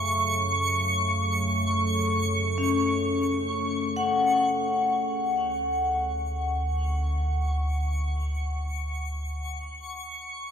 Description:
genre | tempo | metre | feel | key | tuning
ambient | free time | none | none | D major | A4 = 440 Hz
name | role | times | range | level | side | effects
deep rumbling drone | bass | 0.0-10.5 s | D2 to F#2 | -29 LUFS | equal | built-in reverb
overtone-sweeping drone | drone | 0.0-4.6 s | C#3 to A3 | -32 LUFS | equal | chorus, built-in reverb
twinkling granular texture | texture | 0.0-10.5 s | C#6 | -30 LUFS | right 1 dB | built-in reverb
vibraphone with medium hard mallets | arpeggios | 2.6-7.3 s | C#4 to F#5 | -27 LUFS | left 3 dB | diffuse ambient delay
room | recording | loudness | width
wet huge ambient reverb, RT60 7.7 s | none | -24 LUFS | side -8 dB against mid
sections
0.0-4.5 A section; 4.5-10.5 B section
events
fade-in on synth texture 4.5-10.5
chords
0.0 F#m; 4.5 Dmaj7

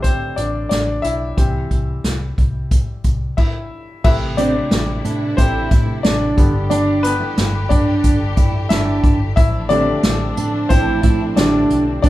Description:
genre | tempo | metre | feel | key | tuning
piano-driven pop | 90 BPM | 4/4 | straight | A minor | A4 = 440 Hz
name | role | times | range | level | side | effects
bright upright piano | accompaniment | 0.0-12.1 s | C3 to E5 | -21 LUFS | left 2 dB | none
vintage muted fingered electric bass | bass | 0.0-12.1 s | G1 to A2 | -23 LUFS | equal | none
unplugged drum kit | drums | 0.0-12.1 s | crash cymbal, hi-hat, kick drum, snare drum | -17 LUFS | equal | none
rich studio string section | sustained chords | 4.0-12.1 s | C3 to G4 | -28 LUFS | left 1 dB | none
fingerpicked steel-string acoustic guitar | riff | 4.4-12.1 s | C4 to E4 | -20 LUFS | right 3 dB | none
room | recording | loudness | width
moderate large studio reverb, RT60 0.9 s | band playing live in one room | -14 LUFS | side -15 dB against mid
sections
0.0-4.0 A section; 4.0-12.1 B section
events
upright piano solo 0.0-4.0, 4.0-12.1; stop 3.4-4.0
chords
0.0 Am11; 1.4 C; 4.0 Amadd9; 6.4 G; 9.4 F6/A

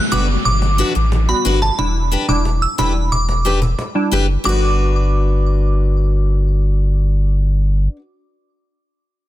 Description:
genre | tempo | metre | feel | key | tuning
dancehall | 90 BPM | 4/4 | straight | G major | A4 = 440 Hz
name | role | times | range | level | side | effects
glassy synth bell | melody | 0.0-6.4 s | A5 to E6 | -22 LUFS | right 2 dB | chorus, tremolo, ping-pong delay
downlifter | sound effects | 0.0-4.5 s | none | -27 LUFS | left 1 dB | none
glassy wavetable pluck | accompaniment | 0.1-7.9 s | G3 to F#4 | -22 LUFS | right 1 dB | chorus
picked steel-string acoustic guitar | arpeggios | 0.1-8.0 s | D4 to B4 | -23 LUFS | left 4 dB | none
warm sub bass | bass | 0.1-7.9 s | E1 to A1 | -16 LUFS | equal | none
cajon | drums | 0.1-3.9 s | none | -25 LUFS | left 1 dB | vintage 12-bit sampler grit
room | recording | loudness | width
small room ambience | dense, heavily limited modern master | -14 LUFS | side -14 dB against mid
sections
0.0-4.5 A section; 4.5-7.1 B section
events
none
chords
0.0 Gmaj7; 1.8 Em7; 4.5 Gmaj7

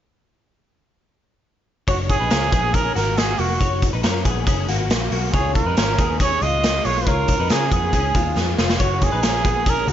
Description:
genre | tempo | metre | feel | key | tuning
jangly indie pop | 139 BPM | 4/4 | straight | F# major | A4 = 440 Hz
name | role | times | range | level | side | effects
breathy trumpet | melody | 1.9-9.9 s | F#4 to D#5 | -22 LUFS | right 4 dB | none
direct-recorded clean electric guitar | arpeggios | 1.9-9.9 s | G#3 to C#5 | -26 LUFS | left 6 dB | ensemble chorus
vintage muted picked electric bass | bass | 1.9-9.9 s | E#1 to C#3 | -24 LUFS | equal | none
raw garage drum kit | drums | 1.9-9.9 s | hi-hat, kick drum, snare drum | -20 LUFS | equal | none
room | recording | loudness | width
light reverb | nothing above 7.6 kHz | -17 LUFS | side -10 dB against mid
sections
1.9-9.9 A section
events
drum fill 8.4-8.8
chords
1.9 F#; 5.3 C#6; 8.8 F#

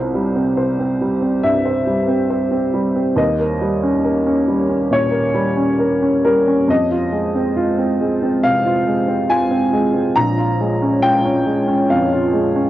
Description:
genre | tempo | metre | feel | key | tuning
neoclassical piano and strings | 69 BPM | 4/4 | rubato | F minor | A4 = 441 Hz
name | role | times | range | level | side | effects
clear upright piano | accompaniment | 0.0-12.7 s | Bb1 to Bb5 | -15 LUFS | equal | cassette tape
warbly tape-like pad | sustained chords | 0.0-12.7 s | G3 to Db5 | -24 LUFS | right 1 dB | chorus, built-in reverb, cassette tape
room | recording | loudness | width
wet booth ambience, RT60 0.2 s | home recording on cassette | -15 LUFS | side -14 dB against mid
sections
0.0-12.7 A section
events
none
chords
0.0 C; 3.2 Eb7; 6.7 Fm7; 10.2 Bbm7

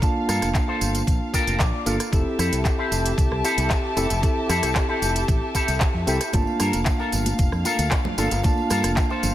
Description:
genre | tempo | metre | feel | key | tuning
nu-disco, nu disco | 114 BPM | 4/4 | straight | G dorian | A4 = 440 Hz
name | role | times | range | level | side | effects
bell-like tine electric piano | accompaniment | 0.0-9.3 s | Bb3 to A5 | -27 LUFS | right 1 dB | low-pass filter, ping-pong delay
dark chamber string section | sustained chords | 0.0-9.3 s | G4 to A5 | -30 LUFS | left 1 dB | sidechain pumping
electric guitar with an envelope filter | riff | 0.0-9.3 s | E4 to G5 | -28 LUFS | left 2 dB | analog chorus, ping-pong delay
electronic kick drum | drums | 0.0-9.1 s | none | -22 LUFS | equal | small room ambience
pop drum kit | drums | 0.0-9.3 s | handclaps, hi-hat, rim click, tambourine | -29 LUFS | right 1 dB | small room ambience
modern bright fingered electric bass | bass | 0.3-9.3 s | F1 to G2 | -25 LUFS | equal | sidechain pumping
tambourine and congas | percussion | 6.3-9.3 s | none | -33 LUFS | right 1 dB | none
room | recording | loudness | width
light reverb | none | -19 LUFS | side -13 dB against mid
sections
0.0-9.3 A section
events
clean electric guitar fill 1.1-2.1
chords
0.0 Gm9; 2.1 Fmaj9; 6.3 Gm9

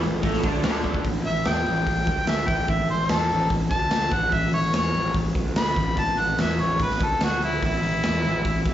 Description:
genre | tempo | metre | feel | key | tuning
blues rock power trio and southern rock | 146 BPM | 4/4 | straight | A mixolydian | A4 = 438 Hz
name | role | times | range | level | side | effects
raw garage guitar | riff | 0.0-1.0 s | A2 to D4 | -27 LUFS | right 1 dB | overdrive, phaser, slapback echo
fuzz picked electric bass | bass | 0.0-8.7 s | A1 to E2 | -26 LUFS | equal | overdrive
raw garage drum kit | drums | 0.0-8.7 s | hi-hat, kick drum, snare drum | -25 LUFS | equal | none
overdriven tonewheel organ | sustained chords | 0.4-1.0 s | C#4 to C#5 | -38 LUFS | right 2 dB | slow rotary speaker, chorus vibrato
mellow harmonica | melody | 1.3-8.7 s | E4 to B5 | -24 LUFS | equal | overdrive, slapback echo
room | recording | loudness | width
light reverb, small room ambience | live gig heard through the venue's PA, club reverb, nothing above 7.6 kHz | -21 LUFS | side -12 dB against mid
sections
0.0-1.1 A section; 1.1-8.7 B section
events
drum fill 0.8; harmonica solo 1.1-8.7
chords
0.0 A; 1.1 A5

